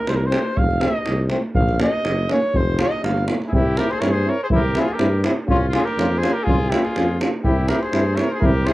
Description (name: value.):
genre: balkan folk, Balkan brass band.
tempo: 122 BPM.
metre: 2/4.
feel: swing 54% on 16ths.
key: C phrygian dominant from 3.5 s.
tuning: A4 = 441 Hz.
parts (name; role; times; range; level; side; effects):
warm flugelhorn; melody; 0.0-8.7 s; F4 to F5; -24 LUFS; equal; cassette tape.
mellow tuba; bass; 0.1-8.7 s; F1 to G2; -22 LUFS; equal; none.
davul; percussion; 0.1-8.7 s; none; -22 LUFS; right 1 dB; none.
clear trombone; accompaniment; 0.3-8.7 s; C4 to F4; -24 LUFS; left 3 dB; cassette tape.
warm euphonium; accompaniment; 0.3-8.7 s; A3 to Db4; -27 LUFS; right 3 dB; cassette tape.
clear trumpet; second line; 3.5-8.7 s; Db4 to C5; -28 LUFS; left 2 dB; cassette tape.
room: light reverb.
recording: home recording on cassette.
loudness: -17 LUFS.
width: side -17 dB against mid.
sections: 0.0-3.5 A section; 3.5-8.7 B section.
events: flugelhorn solo 0.0-3.5.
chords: 0.0 F; 1.6 Bbm; 2.5 F; 3.0 G7; 3.5 C; 5.5 Bbm13/C; 7.4 C.